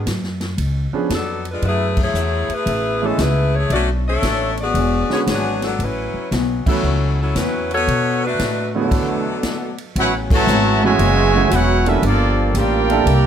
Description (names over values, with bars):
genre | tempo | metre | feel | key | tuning
jazz, big band swing | 115 BPM | 4/4 | swing 67% on 8ths | A major | A4 = 440 Hz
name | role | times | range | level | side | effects
bright saxophone section | melody | 0.0-9.8 s | E3 to E5 | -21 LUFS | left 2 dB | plate reverb
bright baby grand piano | accompaniment | 0.0-13.1 s | E2 to C#5 | -22 LUFS | right 6 dB | none
upright bass | bass | 0.0-13.3 s | E1 to B2 | -20 LUFS | equal | none
swinging big-band drum kit | drums | 0.1-13.2 s | crash cymbal, hi-hat, kick drum, ride cymbal, snare drum | -24 LUFS | equal | none
picked acoustic archtop guitar | accompaniment | 1.6-13.3 s | A2 to C#5 | -28 LUFS | left 4 dB | none
clear trombone section | second line | 8.7-13.3 s | B2 to G4 | -21 LUFS | right 3 dB | none
clear trumpet section | melody | 10.0-13.3 s | Bb3 to A5 | -19 LUFS | right 1 dB | plate reverb
dark trombone section | sustained chords | 10.0-13.3 s | C#3 to G4 | -28 LUFS | left 1 dB | none
room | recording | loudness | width
moderate club reverb, RT60 0.6 s | none | -16 LUFS | side -9 dB against mid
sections
0.0-10.0 A section; 10.0-13.3 B section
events
band accent 1.9, 6.6, 10.2; stop 8.9-10.0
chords
0.0 N.C.; 0.6 C#7b9; 1.6 F#m11; 3.7 Bm9; 4.8 E13; 5.8 A69; 7.9 Esus2; 10.0 A69; 12.0 Gm9